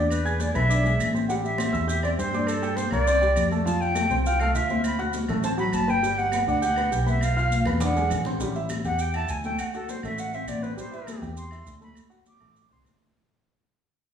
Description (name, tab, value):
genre	Afro-Cuban jazz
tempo	203 BPM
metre	4/4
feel	straight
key	unclear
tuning	A4 = 440 Hz
part	breathy silver concert flute	melody	0.0-12.8 s	A4 to D6	-26 LUFS	equal	none
part	warm concert grand piano	accompaniment	0.0-13.1 s	F3 to G#6	-30 LUFS	right 1 dB	none
part	fingered electric bass	bass	0.0-13.1 s	G1 to G2	-27 LUFS	equal	none
part	claves	percussion	0.1-13.0 s	none	-41 LUFS	right 2 dB	none
part	congas	percussion	0.1-13.2 s	none	-32 LUFS	left 3 dB	none
part	maracas	percussion	0.1-13.2 s	none	-41 LUFS	right 4 dB	none
room	wet recital hall reverb, RT60 1.6 s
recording	recorded in a church or concert hall, studio reverb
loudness	-22 LUFS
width	side -8 dB against mid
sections	0.0-8.4 A section; 8.4-13.2 B section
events	drum fill 7.5-8.4; fade-out 8.4-13.2; flute solo 8.4-13.2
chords	0.1 E7; 1.3 Am7; 2.5 Gmadd9; 3.1 Csus2; 3.7 Fmaj9; 4.8 D6; 6.0 Gmaj7; 7.2 Bsus4; 7.8 E7; 8.4 A5; 9.6 Am6; 10.8 Am7; 12.0 D7